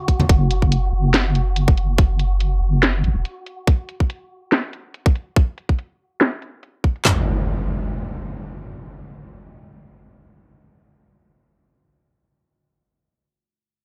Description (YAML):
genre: deep dubstep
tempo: 142 BPM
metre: 4/4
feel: swing 56% on 16ths, half-time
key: unclear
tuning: A4 = 440 Hz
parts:
  - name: wind-like tuned noise texture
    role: texture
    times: 0.0-3.7 s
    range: F#4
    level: -36 LUFS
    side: equal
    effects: built-in reverb
  - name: garage drum kit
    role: drums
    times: 0.1-7.2 s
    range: handclaps, kick drum, snare drum, toms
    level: -18 LUFS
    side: equal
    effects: studio ambience
  - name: garage drum kit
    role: drums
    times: 0.1-7.0 s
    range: hi-hat, snare drum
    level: -22 LUFS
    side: equal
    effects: overdrive, low-pass filter on hats, studio ambience, low-pass filter on snare
  - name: deep soft wobble bass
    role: bass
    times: 0.3-3.2 s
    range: E1 to A1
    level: -21 LUFS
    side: equal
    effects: chorus
  - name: impact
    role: sound effects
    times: 7.1-11.5 s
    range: none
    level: -28 LUFS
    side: equal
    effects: none
room: little or no reverb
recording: none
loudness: -20 LUFS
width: mono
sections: 0.0-7.1 A section; 7.1-10.4 B section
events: filter sweep on drum 0.0-7.1; filter sweep on wobble bass 0.0-3.7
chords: 0.0 F#5; 7.1 N.C.